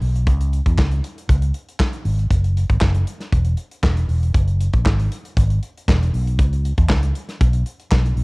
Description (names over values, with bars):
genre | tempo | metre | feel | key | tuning
disco | 118 BPM | 4/4 | straight | C# dorian | A4 = 439 Hz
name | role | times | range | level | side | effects
fingered electric bass with an envelope filter | bass | 0.0-8.2 s | E1 to E2 | -18 LUFS | equal | none
modern studio drum kit | drums | 0.0-8.2 s | handclaps, hi-hat, kick drum, snare drum | -19 LUFS | equal | cassette tape
room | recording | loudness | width
little or no reverb | home recording on cassette | -17 LUFS | side -30 dB against mid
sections
0.0-8.2 A section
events
none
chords
none